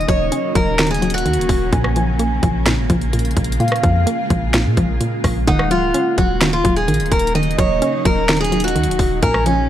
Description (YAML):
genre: hip hop, trap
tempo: 128 BPM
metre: 4/4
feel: half-time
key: Eb minor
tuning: A4 = 437 Hz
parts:
  - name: picked steel-string acoustic guitar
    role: melody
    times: 0.0-1.7, 5.5-9.7 s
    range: Db4 to Eb5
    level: -20 LUFS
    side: equal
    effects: analog delay
  - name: warm velvety synth lead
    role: second line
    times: 0.0-9.7 s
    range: Eb5 to Ab5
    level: -25 LUFS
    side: right 1 dB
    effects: chorus, analog delay
  - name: hollow square pluck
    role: accompaniment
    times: 0.0-9.7 s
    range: Bb2 to Db4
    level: -21 LUFS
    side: equal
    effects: chorus
  - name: granular cloud pad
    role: sustained chords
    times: 0.0-9.7 s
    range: Db3 to F4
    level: -24 LUFS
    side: equal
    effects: built-in reverb
  - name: warm 808-style bass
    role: bass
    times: 0.0-9.7 s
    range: Db1 to Bb2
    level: -21 LUFS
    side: equal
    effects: none
  - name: trap drum kit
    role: drums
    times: 0.0-9.6 s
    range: finger snaps, hi-hat, kick drum, rim click, snare drum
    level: -20 LUFS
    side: equal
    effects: overdrive
room: little or no reverb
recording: dry, gritty hardware recording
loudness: -14 LUFS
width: side -11 dB against mid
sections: 0.0-5.5 A section; 5.5-9.7 B section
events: none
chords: 0.0 Ebm7; 1.7 Bbm7; 5.5 Ebm7